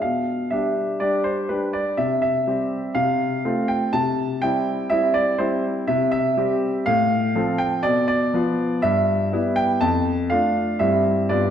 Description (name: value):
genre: classical-period piano sonatina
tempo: 122 BPM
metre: 4/4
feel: straight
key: C major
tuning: A4 = 440 Hz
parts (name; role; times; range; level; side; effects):
- clear concert grand piano; solo; 0.0-11.5 s; F2 to A5; -19 LUFS; equal; none
room: wet recital hall reverb, RT60 1.6 s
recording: dark, warm production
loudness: -19 LUFS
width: side -9 dB against mid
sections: 0.0-11.5 A section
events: none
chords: 0.0 G7/B; 2.0 C; 3.0 F/C; 3.9 C; 6.9 F/A; 7.8 Bdim; 8.8 Em/G; 9.8 Dm/F; 10.8 C/G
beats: | 0.02 0.51 1.00 1.50 | 1.99 2.47 2.96 3.44 | 3.93 4.42 4.90 5.39 | 5.88 6.37 6.86 7.35 | 7.84 8.34 8.83 9.32 | 9.82 10.31 10.81 11.31